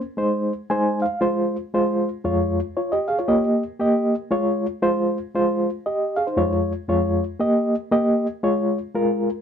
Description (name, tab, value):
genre	soul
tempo	116 BPM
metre	4/4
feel	swing 60% on 8ths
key	unclear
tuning	A4 = 441 Hz
part	reed electric piano	solo	0.2-9.3 s	F2 to Ab5	-19 LUFS	equal	fast tremolo
room	moderate small room reverb, RT60 0.5 s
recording	band playing live in one room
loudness	-20 LUFS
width	side -8 dB against mid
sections	0.0-1.2 A section; 1.2-9.4 B section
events	reed electric piano fill 0.4-1.2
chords	0.2 Ab; 1.2 Fm; 2.3 Db/F; 3.3 Eb; 4.3 Db; 5.3 Fm; 6.4 Db/F; 7.4 Eb; 8.4 Db